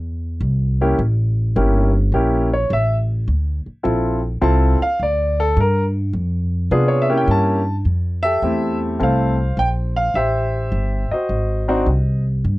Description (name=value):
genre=jazz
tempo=105 BPM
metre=4/4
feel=swing 67% on 8ths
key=F major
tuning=A4 = 440 Hz
part: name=upright bass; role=bass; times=0.0-12.6 s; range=G1 to C3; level=-18 LUFS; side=equal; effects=none
part: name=clear grand piano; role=melody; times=0.8-12.2 s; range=A3 to A5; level=-19 LUFS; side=equal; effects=none
room=little or no reverb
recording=dry, close 1970s-style studio recording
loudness=-16 LUFS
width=side -19 dB against mid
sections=0.0-7.9 A section; 7.9-12.6 B section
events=grand piano solo 0.0-7.9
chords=0.0 Am (rootless); 1.0 A7b9; 3.3 Dm9; 5.6 Fsus2; 6.7 C7b9; 7.9 Fmaj9; 10.2 Am7; 11.3 Ab7